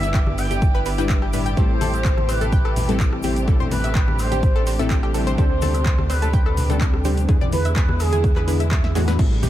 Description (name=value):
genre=progressive house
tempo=126 BPM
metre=4/4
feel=straight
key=A minor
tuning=A4 = 440 Hz
part: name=expressive portamento lead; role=melody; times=0.0-8.4 s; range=G#4 to G5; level=-28 LUFS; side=right 2 dB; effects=lush chorus, dub echo
part: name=rich studio string section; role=sustained chords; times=0.0-9.5 s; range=C3 to G4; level=-29 LUFS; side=right 1 dB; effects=sidechain pumping
part: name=analog pluck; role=arpeggios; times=0.0-9.5 s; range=G4 to G#5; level=-30 LUFS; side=equal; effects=chorus, sidechain pumping, dub echo
part: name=wide unison pluck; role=stabs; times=0.0-9.5 s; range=G2 to E5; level=-27 LUFS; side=left 4 dB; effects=sidechain pumping, dub echo
part: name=round analog bass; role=bass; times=0.0-9.5 s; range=G1 to E2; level=-23 LUFS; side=equal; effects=sidechain pumping
part: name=deep house drum kit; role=drums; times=0.0-9.5 s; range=crash cymbal, handclaps, hi-hat, rim click, snare drum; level=-32 LUFS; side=equal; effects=overdrive
part: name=egg shaker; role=percussion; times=0.0-9.5 s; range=none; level=-41 LUFS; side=left 3 dB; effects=none
part: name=woodblock and congas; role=percussion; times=0.0-9.5 s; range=none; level=-29 LUFS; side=left 3 dB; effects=sidechain pumping on perc
part: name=drifting glass-harmonics texture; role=texture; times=0.0-9.2 s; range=D5 to D6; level=-41 LUFS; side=right 1 dB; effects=none
part: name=electronic kick drum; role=drums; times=0.1-9.3 s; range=none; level=-19 LUFS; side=equal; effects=overdrive
room=little or no reverb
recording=none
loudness=-17 LUFS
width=side -13 dB against mid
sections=0.0-9.2 A section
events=drop 0.0-9.2; drum fill 8.8-9.2; band accent 9.1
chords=0.0 Em7/G; 1.6 Am7; 5.4 D7sus4; 7.3 E7